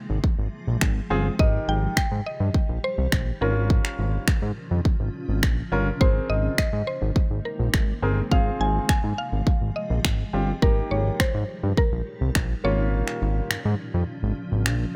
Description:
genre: dance-pop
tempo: 104 BPM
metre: 4/4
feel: straight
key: unclear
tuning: A4 = 443 Hz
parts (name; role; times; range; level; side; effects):
- granular cloud pad; sustained chords; 0.0-15.0 s; Bb2 to Ab4; -38 LUFS; equal; built-in reverb, sidechain pumping
- fat analog bass; bass; 0.1-14.9 s; G1 to Ab2; -27 LUFS; equal; sidechain pumping
- pop drum kit; drums; 0.2-14.8 s; finger snaps, kick drum; -24 LUFS; equal; none
- clear baby grand piano; accompaniment; 1.1-13.6 s; Bb3 to Bb4; -32 LUFS; equal; sidechain pumping
- mallet-like synth pluck; melody; 1.4-14.6 s; Bb4 to Ab5; -32 LUFS; equal; chorus, tape echo
room: digital ambience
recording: none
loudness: -24 LUFS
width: mono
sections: 0.0-15.0 A section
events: kick muted 12.9-15.0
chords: 0.0 Fm/Ab; 1.4 Eb/Ab; 3.4 Bbm/Ab; 6.0 Abadd9; 8.3 Fm/Ab; 10.6 Eb/Ab; 12.6 Bbm/Ab

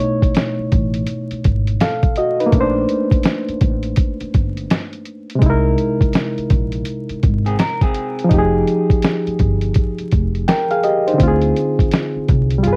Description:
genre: lo-fi hip hop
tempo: 83 BPM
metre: 4/4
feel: swing 64% on 16ths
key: unclear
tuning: A4 = 439 Hz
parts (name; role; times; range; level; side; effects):
- barky reed electric piano; accompaniment; 0.0-12.8 s; B2 to G5; -21 LUFS; equal; overdrive, low-pass filter
- lo-fi sampler-style drum kit; drums; 0.0-12.8 s; hi-hat, kick drum, snare drum; -19 LUFS; equal; overdrive
- upright bass; bass; 0.6-12.8 s; F1 to D2; -23 LUFS; equal; none
- electric guitar through a small old amp; second line; 7.5-8.3 s; C4 to Bb4; -28 LUFS; equal; low-pass filter, tape echo
room: moderate small room reverb, RT60 0.5 s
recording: worn, warbling old tape, cassette tape, vinyl crackle, warbly pitch drift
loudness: -17 LUFS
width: mono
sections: 0.0-12.8 A section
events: none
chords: 0.0 B9; 2.5 Bbmaj9; 5.4 C7alt; 8.3 Fm9; 11.2 Dm7b5

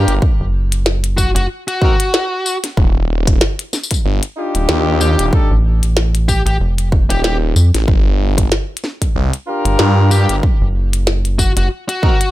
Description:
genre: glitch hop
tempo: 94 BPM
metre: 4/4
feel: swing 56% on 16ths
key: G minor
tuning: A4 = 441 Hz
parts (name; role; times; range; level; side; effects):
- smooth overdriven lead guitar; melody; 0.0-12.3 s; F#4 to G4; -21 LUFS; left 1 dB; digital delay
- warm horn section; stabs; 0.0-5.5, 9.5-12.1 s; C4 to Bb4; -20 LUFS; left 2 dB; vintage 12-bit sampler grit, sidechain pumping, digital delay
- phased detuned saw bass; bass; 0.0-10.4 s; Eb1 to G2; -14 LUFS; equal; phaser
- glitchy drum kit; drums; 0.1-12.3 s; hi-hat, snare drum, tambourine; -19 LUFS; left 1 dB; none
- electronic kick drum; drums; 0.2-12.2 s; none; -14 LUFS; equal; none
- rubbery square bass; bass; 0.4-11.7 s; Eb1 to F2; -14 LUFS; equal; tube saturation
room: little or no reverb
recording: none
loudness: -13 LUFS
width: side -16 dB against mid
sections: 0.0-12.3 A section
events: none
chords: 0.2 N.C.; 2.8 Ebmaj9; 5.3 F7; 7.9 Gm7; 10.4 N.C.

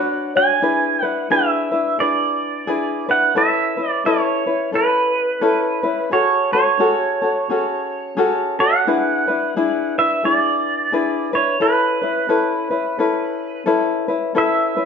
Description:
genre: Hawaiian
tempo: 87 BPM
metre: 4/4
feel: swing 60% on 8ths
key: A major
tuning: A4 = 440 Hz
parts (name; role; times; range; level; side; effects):
- pedal steel guitar; melody; 0.0-14.9 s; B4 to G#5; -19 LUFS; right 3 dB; none
- tenor ukulele; accompaniment; 0.0-14.9 s; C#4 to C#5; -19 LUFS; left 3 dB; none
room: wet stone room reverb, RT60 1.0 s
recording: band playing live in one room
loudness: -16 LUFS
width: side -6 dB against mid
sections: 0.0-14.4 A section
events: none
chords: 0.0 Bmadd9; 0.6 E7; 3.4 Aadd9; 6.1 F#madd9; 8.9 E7; 11.6 Aadd9

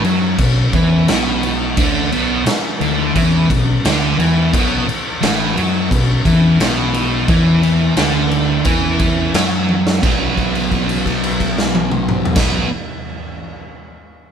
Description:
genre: blues rock power trio and southern rock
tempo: 87 BPM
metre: 4/4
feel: straight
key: unclear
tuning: A4 = 438 Hz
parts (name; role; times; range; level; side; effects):
- sludgy distorted guitar; riff; 0.0-12.7 s; A2 to B3; -16 LUFS; equal; overdrive
- growling fingered electric bass; bass; 0.0-12.6 s; A1 to F#2; -23 LUFS; equal; overdrive
- raw garage drum kit; drums; 0.0-12.5 s; crash cymbal, kick drum, snare drum, toms; -18 LUFS; equal; none
room: light reverb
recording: band playing live in one room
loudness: -13 LUFS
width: side -8 dB against mid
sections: 0.0-10.0 A section; 10.0-12.8 B section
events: drum fill 9.7-10.0; held note 10.0-12.4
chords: 0.0 B5

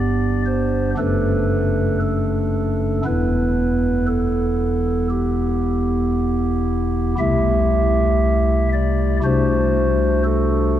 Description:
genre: classical, chorale-style piece for pipe organ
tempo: 58 BPM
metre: 4/4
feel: rubato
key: unclear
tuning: A4 = 440 Hz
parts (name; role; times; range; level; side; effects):
- pipe organ, stopped flute; solo; 0.0-10.8 s; E1 to E5; -17 LUFS; equal; none
room: wet cathedral reverb, RT60 4.6 s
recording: dark, warm production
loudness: -17 LUFS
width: side -11 dB against mid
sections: 0.0-10.8 A section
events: none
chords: 0.0 G; 1.0 D/F#; 3.1 Em; 7.2 Am7/C; 9.2 D7/C

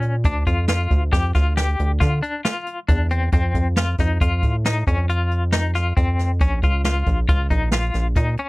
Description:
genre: progressive instrumental, band music in an uneven meter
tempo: 136 BPM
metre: 7/4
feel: straight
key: unclear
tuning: A4 = 440 Hz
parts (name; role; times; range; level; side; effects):
- semi-hollow electric guitar; arpeggios; 0.0-8.5 s; C4 to G4; -25 LUFS; left 3 dB; tremolo
- rubbery square bass; bass; 0.0-8.4 s; Bb1 to D3; -20 LUFS; equal; none
- jazz brush drum kit; drums; 0.0-8.5 s; hi-hat, kick drum, snare drum; -21 LUFS; equal; none
room: little or no reverb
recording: dry, close 1970s-style studio recording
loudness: -18 LUFS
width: side -22 dB against mid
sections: 0.0-8.5 A section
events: none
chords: 0.2 Dm; 3.3 F; 6.4 Bbm

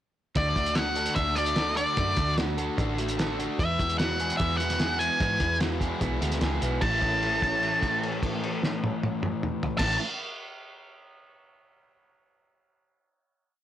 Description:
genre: indie rock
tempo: 149 BPM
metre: 4/4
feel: straight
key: A major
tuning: A4 = 443 Hz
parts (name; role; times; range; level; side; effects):
- octave-fuzz lead guitar; melody; 0.4-10.0 s; D5 to A5; -27 LUFS; equal; distortion, slapback echo
- overdriven electric guitar; riff; 0.4-10.0 s; A2 to A4; -34 LUFS; left 10 dB; none
- overdriven semi-hollow guitar; riff; 0.4-10.0 s; A2 to A4; -33 LUFS; right 6 dB; wide subtle chorus, slapback echo
- overdriven picked electric bass; bass; 0.4-10.0 s; A1 to G#2; -32 LUFS; equal; none
- cloth-damped thuddy drum kit; drums; 0.4-9.9 s; crash cymbal, hi-hat, kick drum, snare drum, toms; -30 LUFS; equal; soft clipping on kick
room: light reverb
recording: blown-out, overdriven recording, overdrive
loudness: -24 LUFS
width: side -12 dB against mid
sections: 0.4-6.8 pre-chorus; 6.8-10.0 final chord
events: held note 6.8-9.8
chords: 0.4 D; 3.6 Eadd9; 6.8 A

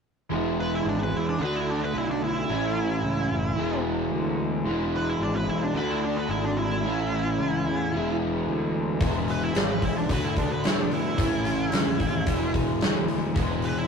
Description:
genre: blues rock power trio and southern rock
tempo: 110 BPM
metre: 4/4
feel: straight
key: E mixolydian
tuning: A4 = 440 Hz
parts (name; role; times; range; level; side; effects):
- overdriven semi-hollow guitar; riff; 0.3-13.9 s; A2 to F#4; -26 LUFS; equal; none
- fuzz fingered electric bass; bass; 0.3-13.9 s; E1 to B2; -31 LUFS; left 1 dB; overdrive
- octave-fuzz lead guitar; melody; 0.6-13.9 s; D4 to B4; -30 LUFS; right 2 dB; wah, distortion
- big rock drum kit; drums; 9.0-13.8 s; hi-hat, kick drum, snare drum; -26 LUFS; equal; none
room: wet booth ambience, RT60 0.2 s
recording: rough rehearsal-room recording, tube saturation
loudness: -23 LUFS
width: side -6 dB against mid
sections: 0.3-13.9 A section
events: none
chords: 0.3 E; 1.4 D; 2.5 A; 3.6 E; 5.8 D; 6.8 A; 7.9 E; 10.1 D; 11.2 A; 12.3 E

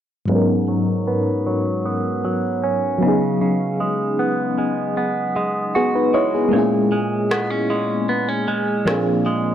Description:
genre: contemporary R&B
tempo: 77 BPM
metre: 4/4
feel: straight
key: G# minor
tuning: A4 = 438 Hz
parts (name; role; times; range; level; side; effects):
- FM electric piano with tremolo; accompaniment; 0.3-9.5 s; G#2 to C#5; -19 LUFS; left 1 dB; phaser, low-pass filter
- direct-recorded clean electric guitar; arpeggios; 0.3-9.5 s; G#2 to F#4; -22 LUFS; right 1 dB; phaser, low-pass filter, tape echo
- electronic rim click; drums; 7.3-9.1 s; none; -25 LUFS; equal; none
room: light reverb, digital ambience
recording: dry, gritty hardware recording, transformer saturation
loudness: -17 LUFS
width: side -10 dB against mid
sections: 0.3-9.5 A section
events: filter sweep 0.3-9.5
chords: 0.3 G#m11; 3.0 C#7sus4; 6.5 A#m7b5; 8.9 A#9

